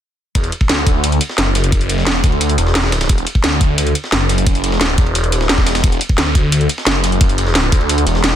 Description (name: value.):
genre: dark technical drum and bass.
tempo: 175 BPM.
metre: 4/4.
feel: straight.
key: unclear.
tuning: A4 = 440 Hz.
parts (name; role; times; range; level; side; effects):
phased detuned saw bass; bass; 0.4-8.4 s; E1 to D2; -16 LUFS; equal; phaser.
breakbeat sampler-style drum kit; drums; 0.4-8.4 s; ride cymbal, snare drum; -25 LUFS; right 1 dB; high-pass filter on cymbals, high-pass filter on snare, high-pass filter on room.
drum and bass drum kit; drums; 0.4-8.4 s; hi-hat, snare drum; -17 LUFS; equal; none.
electronic kick drum; drums; 0.4-7.8 s; none; -14 LUFS; equal; none.
room: little or no reverb.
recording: dense, heavily limited modern master.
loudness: -12 LUFS.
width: side -10 dB against mid.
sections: 0.4-8.4 A section.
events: none.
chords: none.